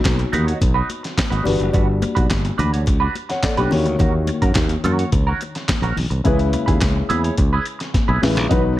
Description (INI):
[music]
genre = disco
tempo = 106 BPM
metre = 4/4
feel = straight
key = unclear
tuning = A4 = 440 Hz
[part]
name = clean electric guitar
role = accompaniment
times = 0.0-8.8 s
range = C#4 to C#5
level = -25 LUFS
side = right 5 dB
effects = wah, wide subtle chorus
[part]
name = warm grand piano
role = accompaniment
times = 0.0-8.8 s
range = B2 to F#5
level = -24 LUFS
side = left 3 dB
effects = none
[part]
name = modern bright fingered electric bass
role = bass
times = 0.0-8.8 s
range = F#1 to F#2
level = -20 LUFS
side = equal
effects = none
[part]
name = dusty soul sampler-style drum kit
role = drums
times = 0.0-8.6 s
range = handclaps, hi-hat, kick drum, snare drum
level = -21 LUFS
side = equal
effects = none
[part]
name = congas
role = percussion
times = 0.1-8.6 s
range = none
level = -28 LUFS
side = left 3 dB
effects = none
[sound]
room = digital ambience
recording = none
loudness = -16 LUFS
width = side -15 dB against mid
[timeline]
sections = 0.0-8.8 A section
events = drum fill 7.9-8.5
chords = 0.0 B; 1.5 Gmaj7; 3.7 D#m7; 6.3 C#m7